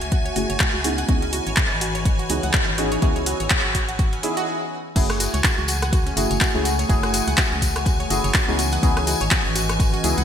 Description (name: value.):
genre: deep house.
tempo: 124 BPM.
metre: 4/4.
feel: swing 57% on 16ths.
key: F# minor.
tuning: A4 = 442 Hz.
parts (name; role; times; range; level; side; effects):
warbly tape-like pad; sustained chords; 0.0-10.2 s; E3 to E6; -30 LUFS; left 1 dB; chorus, built-in reverb, sidechain pumping.
analog pluck; arpeggios; 0.0-10.2 s; C#4 to F#5; -30 LUFS; right 4 dB; chorus, sidechain pumping, digital delay.
deep mellow chord stab; stabs; 0.0-10.2 s; A3 to G#4; -27 LUFS; equal; chorus, sidechain pumping, ping-pong delay.
organ-like FM bass; bass; 0.0-10.2 s; F#1 to C#2; -26 LUFS; equal; sidechain pumping.
deep house drum kit; drums; 0.0-10.2 s; crash cymbal, handclaps, hi-hat, rim click; -24 LUFS; equal; high-pass filter on hats, studio reverb, high-pass filter on snare, high-pass filter on cymbals, gated reverb.
string machine, violins; texture; 0.0-10.2 s; G#5; -31 LUFS; left 1 dB; ensemble chorus, sidechain pumping.
electronic kick drum; drums; 0.1-9.9 s; none; -21 LUFS; equal; studio reverb.
tambourine; percussion; 5.0-10.2 s; none; -30 LUFS; left 5 dB; none.
room: moderate lush hall reverb, RT60 1.6 s.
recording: bright 1980s-style digital production.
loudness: -18 LUFS.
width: side -8 dB against mid.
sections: 0.0-5.0 A section; 5.0-10.2 B section.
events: build-up 0.0-5.0; filter sweep on synth stab 0.0-5.0; stop 4.5-5.0; drop 5.0-10.2.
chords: 0.0 F#m9; 0.8 C#m9; 5.0 F#m9; 8.6 C#m9.